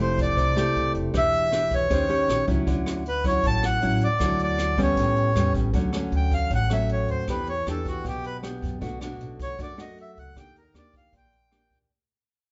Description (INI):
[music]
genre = bossa nova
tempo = 156 BPM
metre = 4/4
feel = straight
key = D major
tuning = A4 = 440 Hz
[part]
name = accordion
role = melody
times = 0.0-11.8 s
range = F#4 to A5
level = -28 LUFS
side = equal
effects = none
[part]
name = nylon-string guitar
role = accompaniment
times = 0.0-11.9 s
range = F#2 to C5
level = -30 LUFS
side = equal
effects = none
[part]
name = upright bass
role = bass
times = 0.0-11.9 s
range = E1 to F#2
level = -31 LUFS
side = equal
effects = none
[part]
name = jazz brush drum kit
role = drums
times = 0.2-11.8 s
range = hi-hat, kick drum, rim click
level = -34 LUFS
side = equal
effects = none
[sound]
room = moderate large studio reverb, RT60 1.0 s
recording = band playing live in one room, nothing above 7.7 kHz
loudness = -24 LUFS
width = mono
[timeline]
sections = 0.0-5.7 A section; 5.7-11.9 B section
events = fade-out 5.7-11.9; accordion solo 5.7-11.9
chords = 0.0 Fmaj9; 1.1 Em7; 1.9 Eb6; 2.7 Dmaj9; 5.0 A9; 5.7 Dmaj7; 7.3 Em7; 8.8 Bm7; 10.4 Ebmaj7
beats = 0.37 0.75 | 1.14 1.52 1.90 2.29 | 2.67 3.05 3.44 3.82 | 4.21 4.59 4.97 5.36 | 5.74 6.13 6.51 6.89 | 7.28 7.66 8.05 8.43 | 8.82 9.20 9.59 9.97 | 10.36 10.74 11.13 11.51